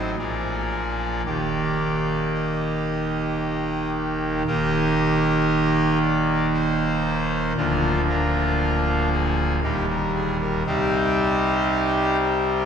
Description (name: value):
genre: classical, chorale-style piece for pipe organ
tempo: 58 BPM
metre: 3/4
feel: straight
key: Eb major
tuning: A4 = 439 Hz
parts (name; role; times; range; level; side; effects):
- pipe organ, trumpet; solo; 0.0-12.7 s; D1 to Eb5; -20 LUFS; equal; none
room: wet church reverb, RT60 3.7 s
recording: heard from further back in the room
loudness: -20 LUFS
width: side -7 dB against mid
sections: 0.0-4.5 A section; 4.5-12.7 A section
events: none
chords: 0.2 Bb7; 1.3 Eb; 7.6 Bb/D; 9.6 Eb; 10.7 Cm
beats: 0.18 | 1.25 2.34 3.42 | 4.47 5.50 6.54 | 7.56 8.60 9.64 | 10.67 11.69